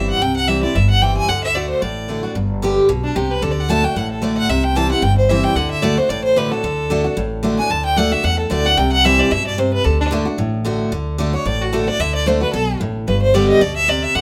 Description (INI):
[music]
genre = bluegrass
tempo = 224 BPM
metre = 4/4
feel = swing 55% on 8ths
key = D mixolydian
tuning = A4 = 442 Hz
[part]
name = rich fiddle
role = melody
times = 0.0-14.2 s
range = D4 to A5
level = -21 LUFS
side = equal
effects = none
[part]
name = picked steel-string acoustic guitar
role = accompaniment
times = 0.0-14.2 s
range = G2 to G4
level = -22 LUFS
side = equal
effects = none
[part]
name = upright bass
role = bass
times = 0.0-14.2 s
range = G1 to G2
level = -24 LUFS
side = equal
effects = none
[sound]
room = light reverb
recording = none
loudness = -17 LUFS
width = mono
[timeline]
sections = 0.0-2.4 A section; 2.4-10.9 B section; 10.9-14.2 C section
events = fiddle solo 10.9-14.2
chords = 0.0 C; 1.3 D; 2.4 G; 3.4 D; 4.5 C; 5.6 D; 8.8 C; 9.9 D; 13.1 G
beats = | 0.22 0.49 0.75 1.02 | 1.29 1.56 1.82 2.09 | 2.36 2.62 2.89 3.16 | 3.43 3.69 3.96 4.23 | 4.50 4.76 5.03 5.30 | 5.57 5.83 6.10 6.37 | 6.64 6.90 7.17 7.44 | 7.71 7.98 8.24 8.51 | 8.78 9.05 9.32 9.59 | 9.85 10.12 10.39 10.66 | 10.93 11.20 11.47 11.73 | 12.00 12.27 12.54 12.81 | 13.08 13.35 13.61 13.88 | 14.15